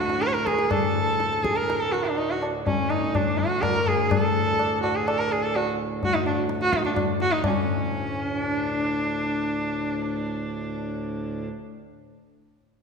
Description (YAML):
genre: indian classical, Hindustani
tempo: 126 BPM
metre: 7/4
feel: straight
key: D raga puriya dhanashri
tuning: A4 = 440 Hz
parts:
  - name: rich sarangi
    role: melody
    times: 0.0-11.5 s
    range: C#4 to C#5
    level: -25 LUFS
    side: equal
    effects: none
  - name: pedal harmonium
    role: second line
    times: 0.0-7.6 s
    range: C#4 to Bb4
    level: -33 LUFS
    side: right 6 dB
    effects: none
  - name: pedal harmonium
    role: drone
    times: 0.0-11.5 s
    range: D2 to A2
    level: -32 LUFS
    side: right 1 dB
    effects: none
  - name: tabla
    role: percussion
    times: 0.1-7.6 s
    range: none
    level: -27 LUFS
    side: left 3 dB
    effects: none
room: wet scoring stage reverb, RT60 2.0 s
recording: recorded in a church or concert hall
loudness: -22 LUFS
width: side -5 dB against mid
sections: 0.0-7.4 A section; 7.4-10.7 B section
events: speeding up 0.0-10.7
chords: none